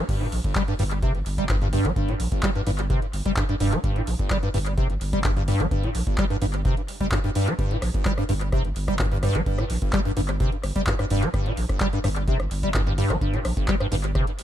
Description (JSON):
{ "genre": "acid house", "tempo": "128 BPM", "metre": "4/4", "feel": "straight", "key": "G minor pentatonic", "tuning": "A4 = 440 Hz", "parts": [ { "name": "liquid acid bass", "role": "riff", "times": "0.0-14.3 s", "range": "G1 to G3", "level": "-25 LUFS", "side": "equal", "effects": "wide subtle chorus, analog delay" }, { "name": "saturated sub bass", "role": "bass", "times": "0.1-14.2 s", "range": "F1 to Bb1", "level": "-28 LUFS", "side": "equal", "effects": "sidechain pumping" }, { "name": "electro analog drum machine", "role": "drums", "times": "0.1-14.4 s", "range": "crash cymbal, handclaps, hi-hat, rim click", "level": "-32 LUFS", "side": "equal", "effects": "studio ambience, analog delay" }, { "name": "electronic kick drum", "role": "drums", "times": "0.1-14.2 s", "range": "none", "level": "-26 LUFS", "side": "equal", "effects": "studio ambience" } ], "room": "little or no reverb", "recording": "echo-heavy mix", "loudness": "-21 LUFS", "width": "side -11 dB against mid", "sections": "0.1-14.4 A section", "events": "drop 0.1-14.4", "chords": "none", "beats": "| 0.09 0.56 1.03 1.50 | 1.96 2.43 2.90 3.37 | 3.84 4.31 4.78 5.25 | 5.71 6.18 6.65 7.12 | 7.59 8.06 8.53 8.99 | 9.46 9.93 10.40 10.87 | 11.34 11.81 12.28 12.74 | 13.21 13.68 14.15" }